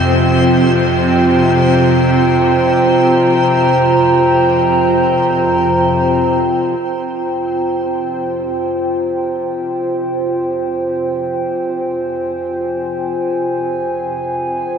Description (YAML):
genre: dark ambient drone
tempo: free time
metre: none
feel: none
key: F minor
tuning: A4 = 438 Hz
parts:
  - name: dark analog pad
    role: sustained chords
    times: 0.0-14.8 s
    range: F4 to Bb5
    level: -14 LUFS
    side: right 1 dB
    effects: chorus
  - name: bowed-like drone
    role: drone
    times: 0.0-14.8 s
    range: F2 to C3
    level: -18 LUFS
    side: equal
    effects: built-in reverb
  - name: backwards swelling texture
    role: texture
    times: 0.0-6.9 s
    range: C4 to C5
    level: -22 LUFS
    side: equal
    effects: built-in reverb
room: wet huge ambient reverb, RT60 8.2 s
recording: none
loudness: -13 LUFS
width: side -7 dB against mid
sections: 0.0-6.8 A section; 6.8-14.8 B section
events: fade-in on synth drone 6.8-14.8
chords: 0.0 Fm